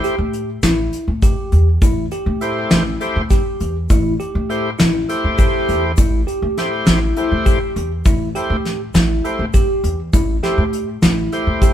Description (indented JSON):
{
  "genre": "progressive instrumental, band music in an uneven meter",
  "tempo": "202 BPM (eighths)",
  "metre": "7/8",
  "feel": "straight",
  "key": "A minor",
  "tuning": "A4 = 440 Hz",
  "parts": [
    { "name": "overdriven tonewheel organ", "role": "accompaniment", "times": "0.0-11.7 s", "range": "A3 to C5", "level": "-22 LUFS", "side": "left 1 dB", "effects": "slow rotary speaker" },
    { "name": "bell-like tine electric piano", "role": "arpeggios", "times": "0.0-11.7 s", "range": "E4 to G4", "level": "-22 LUFS", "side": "equal", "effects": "phaser" },
    { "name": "soft brush drum kit", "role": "drums", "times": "0.0-11.7 s", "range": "hi-hat, kick drum, snare drum", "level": "-16 LUFS", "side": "equal", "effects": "none" },
    { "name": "upright bass", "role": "bass", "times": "0.2-11.7 s", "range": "A1 to A2", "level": "-20 LUFS", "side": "equal", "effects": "none" },
    { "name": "egg shaker", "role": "percussion", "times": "0.6-11.7 s", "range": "none", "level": "-36 LUFS", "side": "left 6 dB", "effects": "none" }
  ],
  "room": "light reverb",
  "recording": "band playing live in one room",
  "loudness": "-15 LUFS",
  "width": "side -11 dB against mid",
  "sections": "0.0-11.7 A section",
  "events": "none",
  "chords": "0.0 Am7"
}